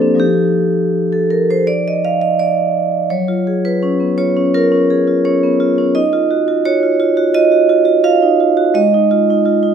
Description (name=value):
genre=classical, contemporary piece for solo vibraphone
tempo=84 BPM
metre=4/4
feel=rubato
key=Eb minor from 3.1 s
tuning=A4 = 440 Hz
part: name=vibraphone with medium hard mallets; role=solo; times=0.0-9.7 s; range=F3 to F5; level=-12 LUFS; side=right 1 dB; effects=none
room=moderate recital hall reverb, RT60 1.4 s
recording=minimal, uncompressed stereo recording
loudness=-12 LUFS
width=side -7 dB against mid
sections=0.0-9.7 A section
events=none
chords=0.2 F9; 3.1 Gbmaj9; 6.0 Ebm9; 8.8 Ab5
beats=| 0.19 0.92 1.65 2.38 | 3.10 3.83 4.55 5.26 | 5.96 6.67 7.36 8.06 | 8.76 9.46